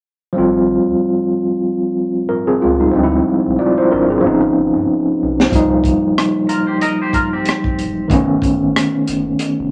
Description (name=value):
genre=R&B, neo-soul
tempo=93 BPM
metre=4/4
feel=swing 57% on 16ths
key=Ab major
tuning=A4 = 440 Hz
part: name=overdriven tine electric piano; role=accompaniment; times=0.3-9.7 s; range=Eb3 to D5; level=-16 LUFS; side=equal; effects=fast tremolo
part: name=round analog bass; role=bass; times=0.4-9.7 s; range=Fb1 to G2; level=-28 LUFS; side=equal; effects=none
part: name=crunchy breakbeat drum kit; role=drums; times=5.4-9.6 s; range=hi-hat, kick drum, rim click, snare drum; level=-21 LUFS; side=equal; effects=none
part: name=twangy electric guitar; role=second line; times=6.5-8.1 s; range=C4 to Eb5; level=-23 LUFS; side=equal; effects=tremolo
room=wet small room reverb, RT60 0.5 s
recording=none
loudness=-16 LUFS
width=mono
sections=0.4-9.7 A section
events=drum fill 4.2-5.5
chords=0.4 Ab6; 2.9 Dm7b5; 4.2 Gaug7; 5.5 Cm7; 8.1 F7b13